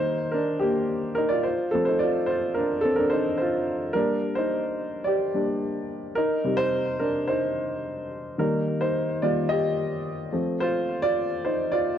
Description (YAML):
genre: pop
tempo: 108 BPM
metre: 4/4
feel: straight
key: unclear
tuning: A4 = 440 Hz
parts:
  - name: warm baby grand piano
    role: solo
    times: 0.0-12.0 s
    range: C3 to Eb5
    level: -23 LUFS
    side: equal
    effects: ping-pong delay
room: moderate plate reverb, RT60 3.4 s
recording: worn, warbling old tape, cassette tape, warbly pitch drift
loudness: -23 LUFS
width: side -9 dB against mid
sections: 0.0-12.0 A section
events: grand piano solo 0.0-12.0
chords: 0.0 Eb; 1.5 F; 4.0 Gm; 6.2 Cm; 8.4 Eb; 10.3 F